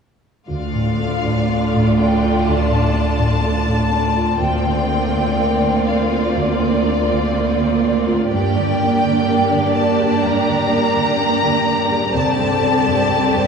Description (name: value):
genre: cinematic, emotional film score for orchestra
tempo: 62 BPM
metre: 4/4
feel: rubato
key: unclear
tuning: A4 = 440 Hz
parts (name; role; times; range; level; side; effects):
- rich studio violin section; melody; 0.5-13.5 s; D5 to Bb5; -22 LUFS; left 2 dB; none
- rich studio violin section; second line; 0.5-13.5 s; F4 to D5; -22 LUFS; equal; none
- dark grand piano; accompaniment; 0.5-13.5 s; C2 to G4; -21 LUFS; left 1 dB; none
- warm symphonic viola section; accompaniment; 0.5-13.5 s; D3 to D4; -21 LUFS; right 3 dB; none
- rich studio cello section; bass; 0.5-13.5 s; C2 to G2; -22 LUFS; right 2 dB; none
room: wet scoring stage reverb, RT60 2.0 s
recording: heard from further back in the room, small room ambience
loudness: -15 LUFS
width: side -6 dB against mid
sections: 0.5-13.5 A section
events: none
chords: 0.5 Dm; 4.4 Bbadd9/D; 8.3 Gm; 12.1 Csus2